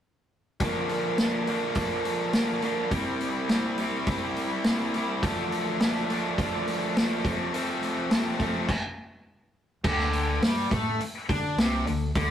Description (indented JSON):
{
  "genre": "classic rock",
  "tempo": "104 BPM",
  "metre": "4/4",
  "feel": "straight",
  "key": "D minor",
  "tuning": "A4 = 440 Hz",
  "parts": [
    { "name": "overdriven electric guitar", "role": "riff", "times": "0.6-12.3 s", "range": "F2 to E4", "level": "-30 LUFS", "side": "right 4 dB", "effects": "none" },
    { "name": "tight distorted guitar", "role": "riff", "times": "0.6-12.3 s", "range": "F2 to E4", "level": "-30 LUFS", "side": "left 5 dB", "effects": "distortion" },
    { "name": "vintage drum kit", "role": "drums", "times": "0.6-12.3 s", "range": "crash cymbal, hi-hat, kick drum, snare drum", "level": "-28 LUFS", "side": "equal", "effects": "none" },
    { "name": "growling fingered electric bass", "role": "bass", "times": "9.8-12.3 s", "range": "C2 to D3", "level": "-31 LUFS", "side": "equal", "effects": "overdrive" }
  ],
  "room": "moderate small room reverb, RT60 0.6 s",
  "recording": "rough rehearsal-room recording",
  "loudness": "-24 LUFS",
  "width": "side -10 dB against mid",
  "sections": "0.6-9.8 A section; 9.8-12.3 B section",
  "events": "stop 8.7-9.8",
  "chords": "0.6 Bb; 2.9 C; 5.2 Dm; 7.2 F; 9.8 D5",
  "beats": "| 0.60 1.18 1.76 2.33 | 2.91 3.49 4.07 4.64 | 5.22 5.80 6.38 6.95 | 7.53 8.11 8.69 9.27 | 9.84 10.42 11.00 11.58 | 12.15"
}